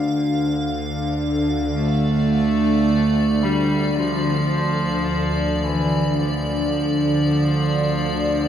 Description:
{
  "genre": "dark ambient drone",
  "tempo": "free time",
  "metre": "none",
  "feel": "none",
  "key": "D minor",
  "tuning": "A4 = 440 Hz",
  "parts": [
    { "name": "bowed-like drone", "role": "drone", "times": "0.0-8.5 s", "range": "D2 to D3", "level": "-20 LUFS", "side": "left 1 dB", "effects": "built-in reverb" },
    { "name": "icy glass pad", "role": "texture", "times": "0.0-8.5 s", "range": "D5 to F5", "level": "-28 LUFS", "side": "right 1 dB", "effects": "chorus, built-in reverb" },
    { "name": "warm cello", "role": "melody", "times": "1.8-8.5 s", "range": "E3 to A3", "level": "-22 LUFS", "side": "right 2 dB", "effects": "tape echo" }
  ],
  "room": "wet echo chamber reverb, RT60 2.1 s",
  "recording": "echo-heavy mix",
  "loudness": "-18 LUFS",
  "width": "side -9 dB against mid",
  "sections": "0.0-1.8 A section; 1.8-8.5 B section",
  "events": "none",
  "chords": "0.0 Dm",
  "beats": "free time"
}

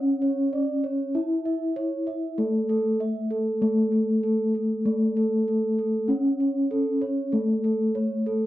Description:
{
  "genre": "gamelan",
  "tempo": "48 BPM",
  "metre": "4/4",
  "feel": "straight",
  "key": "unclear",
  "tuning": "A4 = 438 Hz",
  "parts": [
    { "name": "gamelan-type bronze metallophone", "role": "melody", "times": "0.0-8.5 s", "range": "A3 to E4", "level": "-24 LUFS", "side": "left 1 dB", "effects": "none" },
    { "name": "gamelan-type bronze metallophone", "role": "arpeggios", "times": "0.0-8.5 s", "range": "A4 to E5", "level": "-28 LUFS", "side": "right 2 dB", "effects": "none" }
  ],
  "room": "light reverb",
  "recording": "dry, close 1970s-style studio recording",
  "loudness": "-22 LUFS",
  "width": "side -15 dB against mid",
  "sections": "0.0-8.5 A section",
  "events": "none",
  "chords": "none",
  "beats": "1.14 | 2.38 3.62 4.86 6.10 | 7.34"
}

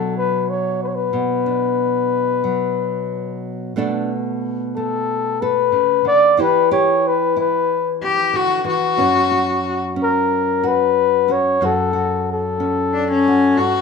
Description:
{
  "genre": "acoustic folk-pop ballad",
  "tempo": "92 BPM",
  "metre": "4/4",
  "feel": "straight",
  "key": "B minor",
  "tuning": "A4 = 440 Hz",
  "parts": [
    { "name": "breathy flugelhorn", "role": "melody", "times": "0.0-13.8 s", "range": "A4 to D5", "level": "-17 LUFS", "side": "left 4 dB", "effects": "none" },
    { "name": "nylon-string guitar", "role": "accompaniment", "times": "0.0-13.8 s", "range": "F#2 to A4", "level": "-22 LUFS", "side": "right 2 dB", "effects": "none" },
    { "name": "clear cello", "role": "second line", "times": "8.0-13.8 s", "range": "C#4 to G4", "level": "-16 LUFS", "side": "left 4 dB", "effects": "none" }
  ],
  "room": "little or no reverb",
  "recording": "rough home demo mix, small room ambience",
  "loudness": "-16 LUFS",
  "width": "side -5 dB against mid",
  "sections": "0.0-3.8 A section; 3.8-13.8 B section",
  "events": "none",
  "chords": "0.0 Bm; 3.8 Bm7; 6.4 Em; 9.0 F#; 11.6 F#m",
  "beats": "0.48 | 1.13 1.79 2.45 3.11 | 3.76 4.42 5.08 5.73 | 6.39 7.04 7.70 8.35 | 9.01 9.66 10.31 10.97 | 11.62 12.28 12.93 13.59"
}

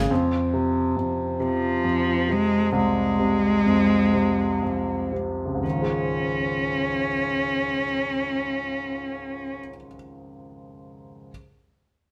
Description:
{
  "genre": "pop",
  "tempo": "38-47 BPM (dotted quarters)",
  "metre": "6/8",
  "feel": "straight",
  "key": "Db major",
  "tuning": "A4 = 439 Hz",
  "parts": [
    { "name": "warm concert grand piano", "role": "accompaniment", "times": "0.0-11.3 s", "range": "C2 to Ab3", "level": "-28 LUFS", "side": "equal", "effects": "none" },
    { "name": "warm cello", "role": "melody", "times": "1.4-9.6 s", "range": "F3 to Db4", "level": "-26 LUFS", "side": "equal", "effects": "none" }
  ],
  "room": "moderate stone room reverb, RT60 1.1 s",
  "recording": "band playing live in one room",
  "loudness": "-24 LUFS",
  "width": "mono",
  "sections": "0.1-5.6 A section; 5.6-8.8 B section",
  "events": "slowing down 0.1-5.6",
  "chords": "0.1 Fm; 5.6 Dbadd9",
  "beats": "| 0.10 1.40 | 2.73 4.14 | 5.65 7.22"
}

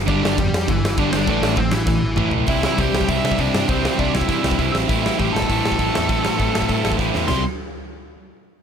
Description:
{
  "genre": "punk rock",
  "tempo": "200 BPM",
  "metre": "4/4",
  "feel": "straight",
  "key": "C major",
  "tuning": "A4 = 440 Hz",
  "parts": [
    { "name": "picked electric bass", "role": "bass", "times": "0.0-7.4 s", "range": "G1 to C3", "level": "-25 LUFS", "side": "equal", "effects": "none" },
    { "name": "bluesy overdriven lead guitar", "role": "melody", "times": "0.1-7.4 s", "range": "E3 to C6", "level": "-24 LUFS", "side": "equal", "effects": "distortion" },
    { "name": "crunchy overdriven guitar", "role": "riff", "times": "0.1-7.4 s", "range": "G2 to C4", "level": "-24 LUFS", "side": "left 11 dB", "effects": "none" },
    { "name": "distorted electric guitar", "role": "riff", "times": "0.1-7.4 s", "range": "G2 to E4", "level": "-23 LUFS", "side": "right 15 dB", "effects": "overdrive" },
    { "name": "big rock drum kit", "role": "drums", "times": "0.1-7.4 s", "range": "crash cymbal, hi-hat, kick drum, snare drum, toms", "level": "-23 LUFS", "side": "equal", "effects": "none" }
  ],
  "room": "little or no reverb",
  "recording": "none",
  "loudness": "-17 LUFS",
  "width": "side -7 dB against mid",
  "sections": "0.0-2.5 A section; 2.5-7.3 B section; 7.3-8.5 C section",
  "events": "drum fill 1.9-2.5, 7.0",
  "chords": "0.0 G5; 1.3 Am; 2.5 C; 4.7 Am; 7.3 C5",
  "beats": "| 0.08 0.38 0.68 0.98 | 1.28 1.58 1.88 2.19 | 2.48 2.79 3.09 3.39 | 3.69 3.99 4.29 4.59 | 4.89 5.19 5.49 5.79 | 6.09 6.39 6.69 6.99 | 7.29"
}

